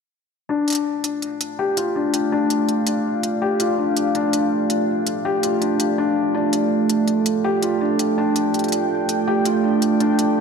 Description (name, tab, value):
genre	half-time drum and bass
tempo	164 BPM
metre	4/4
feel	swing 55% on 16ths, half-time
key	D minor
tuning	A4 = 439 Hz
part	deep dark ambient pad	sustained chords	1.3-10.4 s	A3 to G5	-21 LUFS	right 4 dB	chorus, built-in reverb, vintage 12-bit sampler grit
part	felt-muted upright piano	arpeggios	0.5-10.4 s	D4 to G4	-21 LUFS	left 4 dB	low-pass filter, analog delay
part	electronic hi-hat	drums	0.7-10.3 s	none	-26 LUFS	equal	none
room	wet lush hall reverb, RT60 1.6 s, studio ambience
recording	dreamy mix soaked in reverb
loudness	-18 LUFS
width	side -6 dB against mid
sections	0.5-10.4 A section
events	none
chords	0.5 Dm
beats	| 0.49 0.86 1.23 1.59 | 1.96 2.32 2.69 3.06 | 3.42 3.79 4.15 4.52 | 4.88 5.25 5.62 5.98 | 6.35 6.71 7.08 7.45 | 7.81 8.18 8.54 8.91 | 9.27 9.64 10.01 10.37